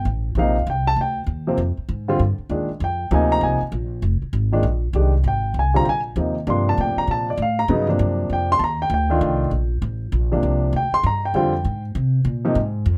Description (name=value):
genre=modal jazz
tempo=197 BPM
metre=4/4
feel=swing 63% on 8ths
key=G phrygian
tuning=A4 = 441 Hz
part: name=warm grand piano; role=accompaniment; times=0.0-12.6 s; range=Bb2 to C6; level=-23 LUFS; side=equal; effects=none
part: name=upright bass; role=bass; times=0.0-13.0 s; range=F1 to C3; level=-24 LUFS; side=equal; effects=none
room=light reverb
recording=close, detailed microphones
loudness=-21 LUFS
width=mono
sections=0.0-13.0 A section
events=none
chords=0.0 Gm11; 1.6 Fm11; 6.5 Gm11; 11.3 Fmadd9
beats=0.06 | 0.37 0.67 0.98 1.28 | 1.59 1.89 2.20 2.50 | 2.81 3.11 3.42 3.72 | 4.03 4.33 4.64 4.94 | 5.25 5.55 5.86 6.16 | 6.47 6.77 7.08 7.38 | 7.68 7.99 8.29 8.60 | 8.90 9.21 9.51 9.82 | 10.12 10.43 10.73 11.04 | 11.34 11.64 11.95 12.25 | 12.56 12.86